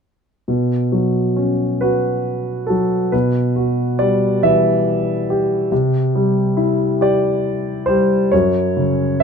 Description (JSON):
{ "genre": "classical, lyrical solo piano", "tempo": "46 BPM (dotted quarters)", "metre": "6/8", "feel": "rubato", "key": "B minor", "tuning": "A4 = 440 Hz", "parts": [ { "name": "warm concert grand piano", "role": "solo", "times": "0.5-9.2 s", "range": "F#2 to E5", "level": "-15 LUFS", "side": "equal", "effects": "none" } ], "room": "moderate small room reverb, RT60 0.6 s", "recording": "minimal, uncompressed stereo recording", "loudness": "-15 LUFS", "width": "side -6 dB against mid", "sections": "0.5-9.2 A section", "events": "none", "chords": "0.5 Bsus2; 3.1 Emadd9/B; 5.7 C; 8.3 F#5" }